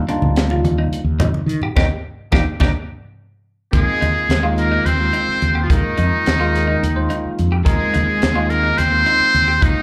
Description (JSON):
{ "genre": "electric jazz fusion", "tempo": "214 BPM (eighths)", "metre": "7/8", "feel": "straight", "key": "unclear", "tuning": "A4 = 440 Hz", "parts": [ { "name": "bell-like tine electric piano", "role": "accompaniment", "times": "0.0-9.8 s", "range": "G3 to C5", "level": "-28 LUFS", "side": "equal", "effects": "phaser" }, { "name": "mellow fretless electric bass", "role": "bass", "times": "0.0-9.8 s", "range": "D2 to Eb3", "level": "-21 LUFS", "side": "equal", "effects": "none" }, { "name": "clean electric guitar", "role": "stabs", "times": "0.1-9.6 s", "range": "D4 to G4", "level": "-28 LUFS", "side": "equal", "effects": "analog chorus, slapback echo" }, { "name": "crisp fusion drum kit", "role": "drums", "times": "0.1-9.8 s", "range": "hi-hat, kick drum, snare drum", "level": "-23 LUFS", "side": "equal", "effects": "none" }, { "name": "congas", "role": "percussion", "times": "0.2-2.7 s", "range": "none", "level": "-27 LUFS", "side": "equal", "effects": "slapback echo" }, { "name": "trumpet with metal mute", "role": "melody", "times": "3.7-9.8 s", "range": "Eb4 to C5", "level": "-20 LUFS", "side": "equal", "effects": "slapback echo" }, { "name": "cranked stack guitar", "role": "second line", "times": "3.7-9.8 s", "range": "Eb3 to C4", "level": "-29 LUFS", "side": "equal", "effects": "overdrive, slapback echo" } ], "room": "light reverb", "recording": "live gig heard through the venue's PA, club ambience", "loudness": "-17 LUFS", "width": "mono", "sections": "0.0-3.7 A section; 3.7-9.8 B section", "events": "band accent 1.8-3.7; tine electric piano fill 2.9-3.7; drum fill 3.3-3.7", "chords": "0.0 Ebmaj7; 3.7 Ab69/Eb", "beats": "0.08 0.36 0.64 0.92 1.20 1.48 | 1.76 2.04 2.33 2.61 2.89 3.17 3.45 | 3.73 4.01 4.29 4.57 4.85 5.13 5.41 | 5.69 5.97 6.25 6.54 6.82 7.10 7.38 | 7.66 7.94 8.22 8.50 8.78 9.06 9.34 | 9.62" }